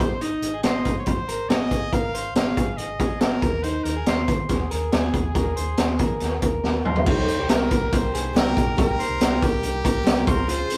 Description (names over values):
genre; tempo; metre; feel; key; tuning
jangly indie pop; 140 BPM; 4/4; straight; unclear; A4 = 440 Hz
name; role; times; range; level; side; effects
brilliant trumpet; melody; 0.0-10.8 s; G4 to F5; -33 LUFS; equal; slapback echo
electric guitar through a small old amp; arpeggios; 0.0-10.8 s; Eb4 to C5; -32 LUFS; equal; none
hollow-body short-scale fingered electric bass; bass; 0.0-10.6 s; Ab1 to Eb3; -33 LUFS; equal; none
raw garage drum kit; drums; 0.0-10.8 s; crash cymbal, hi-hat, kick drum, snare drum, toms; -24 LUFS; equal; none
picked steel-string acoustic guitar; accompaniment; 7.1-10.8 s; C3 to Ab4; -34 LUFS; equal; none
room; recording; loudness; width
light reverb; rough rehearsal-room recording, warm saturation; -22 LUFS; mono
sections
0.0-7.1 A section; 7.1-10.8 B section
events
drum fill 6.6-7.1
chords
0.0 Ab; 3.4 Ebsus4; 7.1 Cm7; 10.3 Dbmaj7